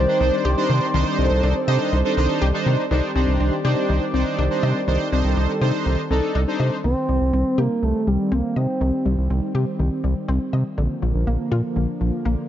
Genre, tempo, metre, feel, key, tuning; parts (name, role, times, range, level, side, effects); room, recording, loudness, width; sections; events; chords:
synth-pop; 122 BPM; 4/4; straight; C dorian; A4 = 440 Hz
expressive portamento lead; melody; 0.0-2.4, 6.8-9.1 s; G3 to C5; -23 LUFS; right 1 dB; chorus, analog delay
warm analog pad; sustained chords; 0.0-12.5 s; D3 to D5; -26 LUFS; equal; chorus, tremolo
analog pluck; arpeggios; 0.0-12.4 s; D3 to Eb5; -29 LUFS; left 4 dB; chorus, analog delay
round analog bass; bass; 0.0-12.4 s; Bb1 to C3; -20 LUFS; equal
analog synth brass; accompaniment; 0.1-6.8 s; D4 to C5; -24 LUFS; right 1 dB; chorus
light reverb; nothing above 7.5 kHz; -18 LUFS; side -11 dB against mid
0.0-2.9 A section; 2.9-6.8 B section; 6.8-12.5 C section
0.0 Cmadd9; 6.8 Cm; 10.8 Bb